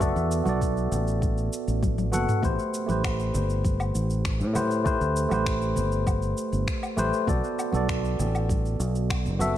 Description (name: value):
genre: sunset chillout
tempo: 99 BPM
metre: 4/4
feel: straight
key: A dorian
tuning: A4 = 440 Hz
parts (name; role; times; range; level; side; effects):
- tine electric piano; accompaniment; 0.0-9.6 s; A3 to F#5; -27 LUFS; moving between left 3 dB and right 5 dB; overdrive, auto-pan, digital delay
- fingered electric bass; bass; 0.0-9.6 s; F#1 to A2; -27 LUFS; equal; none
- electronic kick drum; drums; 0.0-9.2 s; none; -28 LUFS; equal; studio reverb
- smooth R&B drum kit; drums; 0.0-9.5 s; finger snaps, shaker, toms, woodblock; -34 LUFS; left 1 dB; studio reverb
- congas; percussion; 0.0-9.5 s; none; -36 LUFS; right 2 dB; none
room: light reverb, digital ambience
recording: none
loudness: -23 LUFS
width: side -12 dB against mid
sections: 0.0-9.6 A section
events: drum fill 1.8-2.4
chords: 0.0 Bm7; 2.4 Am9; 7.3 Bm7